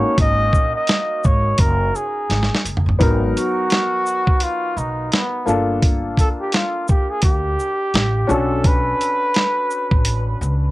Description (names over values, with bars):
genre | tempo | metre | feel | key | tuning
hip hop, jazz-hop | 85 BPM | 4/4 | swing 59% on 16ths | unclear | A4 = 439 Hz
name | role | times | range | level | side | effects
trumpet with bucket mute | melody | 0.0-10.4 s | B3 to D#5 | -21 LUFS | equal | analog delay
warm upright piano | accompaniment | 0.0-10.7 s | F#3 to A#4 | -24 LUFS | left 2 dB | none
upright bass | bass | 0.2-10.7 s | F#1 to D2 | -21 LUFS | equal | none
dusty soul sampler-style drum kit | drums | 0.2-10.6 s | hi-hat, kick drum, shaker, snare drum, toms | -17 LUFS | equal | cassette tape
room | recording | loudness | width
light reverb | home recording on cassette | -16 LUFS | side -18 dB against mid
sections
0.0-3.0 A section; 3.0-10.7 B section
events
drum fill 2.3-3.0; muted trumpet solo 3.0-10.7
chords
0.0 G#9sus4; 3.0 G#m9; 5.5 Gm9; 8.3 Bm9